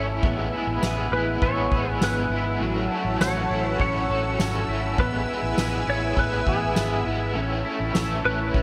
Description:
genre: dream pop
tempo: 101 BPM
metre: 4/4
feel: straight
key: unclear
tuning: A4 = 439 Hz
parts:
  - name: clean lap steel guitar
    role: melody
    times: 0.0-8.6 s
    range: G#4 to C#5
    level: -31 LUFS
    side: equal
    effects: analog chorus, digital delay
  - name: crunchy overdriven guitar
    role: accompaniment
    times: 0.0-8.6 s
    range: A2 to F#4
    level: -32 LUFS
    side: equal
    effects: tremolo, analog chorus
  - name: lush unison pad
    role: sustained chords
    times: 0.0-8.6 s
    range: B4 to E6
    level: -33 LUFS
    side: equal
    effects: chorus, phaser
  - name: electric guitar at the edge of break-up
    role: arpeggios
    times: 0.0-8.6 s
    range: F#3 to A4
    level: -32 LUFS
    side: equal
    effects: ensemble chorus, digital delay
  - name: vintage muted fingered electric bass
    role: bass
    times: 0.0-8.6 s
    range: G#1 to A1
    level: -31 LUFS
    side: equal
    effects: none
  - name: soft-mallet drum kit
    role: drums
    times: 0.2-8.6 s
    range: kick drum, ride cymbal, snare drum, tambourine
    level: -31 LUFS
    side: equal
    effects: none
room: moderate lush hall reverb, RT60 2.4 s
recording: bright 1980s-style digital production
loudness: -24 LUFS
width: mono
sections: 0.0-8.6 A section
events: none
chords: 0.2 E/A; 2.6 F#m7/A; 5.0 E/A; 7.4 A

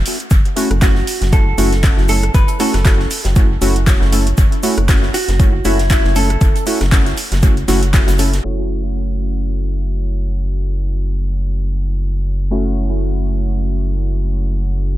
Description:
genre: deep house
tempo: 118 BPM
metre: 4/4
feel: swing 56% on 16ths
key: F# minor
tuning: A4 = 440 Hz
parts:
  - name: rubbery square bass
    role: bass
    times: 0.0-15.0 s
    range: F#1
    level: -17 LUFS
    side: equal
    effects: sidechain pumping
  - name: deep house drum kit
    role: drums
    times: 0.1-8.4 s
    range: handclaps, hi-hat, rim click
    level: -22 LUFS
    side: equal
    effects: overdrive, low-pass filter on hats, low-pass filter on snare, dub echo
  - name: tight metal drum kit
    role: drums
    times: 0.1-8.4 s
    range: hi-hat, shaker, snare drum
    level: -30 LUFS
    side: right 2 dB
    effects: sidechain pumping on hats, high-pass filter on hats, high-pass filter on snare, sidechain pumping on perc, high-pass filter on perc, high-pass filter on room, dub echo
  - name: electronic kick drum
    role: drums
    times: 0.3-8.1 s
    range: none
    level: -13 LUFS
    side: equal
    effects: overdrive
  - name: warm analog keys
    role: stabs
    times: 0.6-15.0 s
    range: A3 to A4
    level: -21 LUFS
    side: right 1 dB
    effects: chorus, sidechain pumping, analog delay
  - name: vintage hollow-body jazz guitar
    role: melody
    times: 0.8-6.6 s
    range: E4 to B4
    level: -22 LUFS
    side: right 1 dB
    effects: analog delay
room: small room ambience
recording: echo-heavy mix, low-pass filter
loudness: -13 LUFS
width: side -14 dB against mid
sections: 0.0-8.4 A section; 8.4-15.0 B section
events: filter sweep 8.4-15.0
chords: 0.0 F#m7

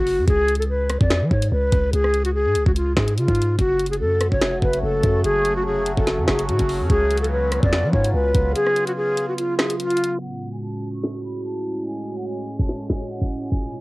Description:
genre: hip hop, drill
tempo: 145 BPM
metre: 4/4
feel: half-time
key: F# harmonic minor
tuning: A4 = 438 Hz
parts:
  - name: breathy mellow concert flute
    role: melody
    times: 0.0-13.8 s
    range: E#4 to C#6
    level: -22 LUFS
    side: equal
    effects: low-pass filter, cassette tape
  - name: long sustained 808-style bass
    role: bass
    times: 0.0-8.5 s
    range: E#1 to E#3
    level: -22 LUFS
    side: equal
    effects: none
  - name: drill drum kit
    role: drums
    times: 0.1-13.8 s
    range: finger snaps, hi-hat, kick drum, rim click, snare drum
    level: -22 LUFS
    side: equal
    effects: overdrive
  - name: sweeping resonant pad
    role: sustained chords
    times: 3.6-13.8 s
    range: A2 to F#4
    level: -27 LUFS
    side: right 1 dB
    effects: chorus, phaser, cassette tape
room: little or no reverb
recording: home recording on cassette, low-pass filter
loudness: -18 LUFS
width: side -21 dB against mid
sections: 0.0-10.2 A section; 10.2-13.8 B section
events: break 8.6-10.2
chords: 0.3 C#7(no3); 3.6 F#m; 6.9 C#7; 10.2 F#madd9

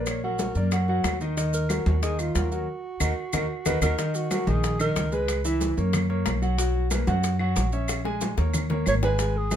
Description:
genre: Afro-Cuban jazz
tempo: 184 BPM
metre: 4/4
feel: straight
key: Eb minor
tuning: A4 = 438 Hz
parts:
  - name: dark alto saxophone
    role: melody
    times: 0.0-5.5, 8.9-9.6 s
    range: F4 to Db5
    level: -30 LUFS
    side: right 2 dB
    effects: none
  - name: clear concert grand piano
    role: accompaniment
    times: 0.0-9.6 s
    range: Eb3 to Ab5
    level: -28 LUFS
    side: equal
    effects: none
  - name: upright bass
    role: bass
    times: 0.0-9.6 s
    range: Ab1 to F#2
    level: -26 LUFS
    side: equal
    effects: none
  - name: bongos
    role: percussion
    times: 0.1-9.6 s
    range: none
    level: -34 LUFS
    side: left 6 dB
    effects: none
  - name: claves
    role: percussion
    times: 0.1-9.6 s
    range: none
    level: -36 LUFS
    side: equal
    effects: none
  - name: congas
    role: percussion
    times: 0.1-9.6 s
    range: none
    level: -32 LUFS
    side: equal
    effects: none
  - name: maracas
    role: percussion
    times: 0.1-9.6 s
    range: none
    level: -36 LUFS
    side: right 4 dB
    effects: none
room: light reverb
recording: minimal, uncompressed stereo recording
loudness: -23 LUFS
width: side -10 dB against mid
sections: 0.0-4.0 A section; 4.0-9.6 B section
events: band accent 2.7-4.0; drum fill 3.0-4.0, 7.9-9.2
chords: 0.1 Bbaug; 1.4 Ebm; 4.0 Ebm7; 5.3 Dbm7; 5.9 Gb; 6.6 Bsus2; 7.9 Bbm7b5; 8.5 Eb5

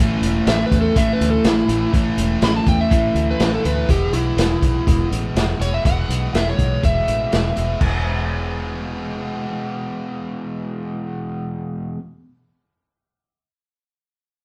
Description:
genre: classic rock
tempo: 122 BPM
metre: 4/4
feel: straight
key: E major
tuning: A4 = 445 Hz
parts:
  - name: crunchy overdriven guitar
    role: riff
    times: 0.0-3.9 s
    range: A2 to A3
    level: -25 LUFS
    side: equal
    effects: none
  - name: overdriven electric guitar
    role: riff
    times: 0.0-12.0 s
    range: E2 to G#4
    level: -27 LUFS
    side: equal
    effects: none
  - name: fingered electric bass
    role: bass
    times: 0.0-11.9 s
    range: E1 to E2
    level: -25 LUFS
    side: equal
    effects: none
  - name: vintage drum kit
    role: drums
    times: 0.2-7.9 s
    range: crash cymbal, hi-hat, kick drum, snare drum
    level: -23 LUFS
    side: equal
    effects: none
  - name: overdriven slide guitar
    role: melody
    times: 0.5-7.8 s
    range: E4 to B5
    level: -25 LUFS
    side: equal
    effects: none
room: moderate studio reverb, RT60 0.7 s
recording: band playing live in one room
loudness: -20 LUFS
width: mono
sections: 0.0-7.8 A section; 7.8-11.7 B section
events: electric slide guitar solo 0.0-7.8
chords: 0.0 A; 3.9 E

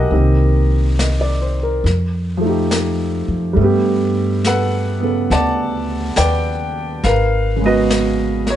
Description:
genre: jazz ballad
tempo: 69 BPM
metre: 4/4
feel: swing 68% on 8ths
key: unclear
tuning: A4 = 440 Hz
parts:
  - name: warm baby grand piano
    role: accompaniment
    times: 0.0-8.6 s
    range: C#3 to A5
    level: -17 LUFS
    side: right 1 dB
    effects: none
  - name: upright bass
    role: bass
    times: 0.0-8.6 s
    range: G#1 to G2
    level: -18 LUFS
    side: equal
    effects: none
  - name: jazz brush drum kit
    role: drums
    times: 0.1-8.6 s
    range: brushed snare drum, hi-hat, snare drum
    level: -25 LUFS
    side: left 2 dB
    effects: none
room: light reverb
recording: nothing above 10.9 kHz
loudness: -14 LUFS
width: side -11 dB against mid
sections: 0.0-8.6 A section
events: none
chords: 0.1 Cm7; 1.8 F9; 3.6 Gmaj9; 7.0 G#m11

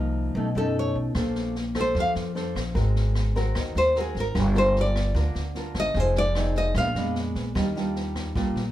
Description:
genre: bossa nova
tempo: 150 BPM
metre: 4/4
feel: straight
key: unclear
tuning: A4 = 440 Hz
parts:
  - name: nylon-string guitar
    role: accompaniment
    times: 0.0-8.7 s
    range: Bb2 to C5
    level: -28 LUFS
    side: equal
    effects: none
  - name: upright bass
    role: bass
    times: 0.0-8.7 s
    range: F1 to F#2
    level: -27 LUFS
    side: equal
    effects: none
  - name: nylon-string guitar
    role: melody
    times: 0.6-7.1 s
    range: Ab4 to F5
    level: -25 LUFS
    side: left 1 dB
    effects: none
  - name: open jazz drum kit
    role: drums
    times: 1.1-8.6 s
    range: kick drum, rim click, snare drum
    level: -34 LUFS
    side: left 1 dB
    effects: none
room: moderate studio reverb, RT60 0.7 s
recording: band playing live in one room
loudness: -22 LUFS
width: side -13 dB against mid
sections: 0.0-8.7 A section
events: nylon-string guitar solo 0.0-8.7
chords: 0.4 B9; 1.2 Bbmaj9; 2.8 Ab9; 4.4 Gm7; 6.0 Fm7; 6.8 Bb7b9; 7.6 Ebmaj9

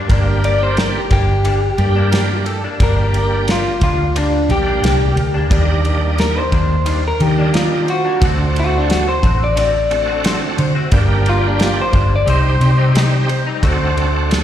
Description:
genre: straight-eighth soul blues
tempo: 89 BPM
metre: 4/4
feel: swing 55% on 16ths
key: G harmonic minor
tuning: A4 = 440 Hz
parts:
  - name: direct-recorded clean electric guitar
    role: stabs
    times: 0.0-14.3 s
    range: G2 to F#4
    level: -26 LUFS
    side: left 5 dB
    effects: ensemble chorus, slapback echo
  - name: bright tonewheel organ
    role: accompaniment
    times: 0.1-14.4 s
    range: G3 to G4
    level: -22 LUFS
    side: right 4 dB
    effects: slow rotary speaker, chorus vibrato, slapback echo
  - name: warm horn section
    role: sustained chords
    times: 0.1-14.3 s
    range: D4 to Eb5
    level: -27 LUFS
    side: right 1 dB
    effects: none
  - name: vintage muted fingered electric bass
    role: bass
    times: 0.1-14.4 s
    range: G1 to Eb3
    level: -16 LUFS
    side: equal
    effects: none
  - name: warm soul drum kit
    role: drums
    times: 0.1-14.4 s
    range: kick drum, ride cymbal, snare drum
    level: -20 LUFS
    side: equal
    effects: none
  - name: electric guitar through a small old amp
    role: melody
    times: 0.4-12.9 s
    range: D4 to D5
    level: -19 LUFS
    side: left 2 dB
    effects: slapback echo
room: small room ambience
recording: live gig heard through the venue's PA, recital hall reverb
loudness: -13 LUFS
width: side -10 dB against mid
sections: 0.0-14.4 A section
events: clean electric guitar solo 0.0-14.4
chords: 0.0 Gm; 5.5 Ebmaj7; 8.2 D7; 10.9 Gm; 12.3 Cm; 13.6 D7

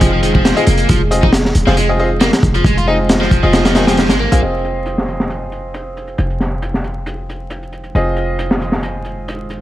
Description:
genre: breakbeat, breaks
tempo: 136 BPM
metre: 4/4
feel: swing 53% on 16ths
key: F minor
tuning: A4 = 441 Hz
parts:
  - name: dark analog pad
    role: sustained chords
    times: 0.0-9.6 s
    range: Ab3 to Ab4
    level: -26 LUFS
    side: right 2 dB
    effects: chorus, sidechain pumping
  - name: overdriven electric guitar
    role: riff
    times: 0.0-4.4 s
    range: Eb3 to F4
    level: -19 LUFS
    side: equal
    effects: low-pass filter, ping-pong delay
  - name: bright concert grand piano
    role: stabs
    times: 0.0-9.6 s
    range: C4 to G5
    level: -20 LUFS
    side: equal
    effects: vintage 12-bit sampler grit, low-pass filter, ping-pong delay
  - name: warm 808-style bass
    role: bass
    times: 0.0-9.6 s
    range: Eb1 to Bb1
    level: -18 LUFS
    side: equal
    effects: none
  - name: crunchy breakbeat drum kit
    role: drums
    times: 0.0-9.6 s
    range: hi-hat, kick drum, snare drum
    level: -16 LUFS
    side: equal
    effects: low-pass filter on kick, low-pass filter on hats, low-pass filter on snare, low-pass filter on room
room: small room ambience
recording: vinyl crackle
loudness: -12 LUFS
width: side -14 dB against mid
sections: 0.0-4.4 A section; 4.4-9.6 B section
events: none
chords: 0.0 Fm7

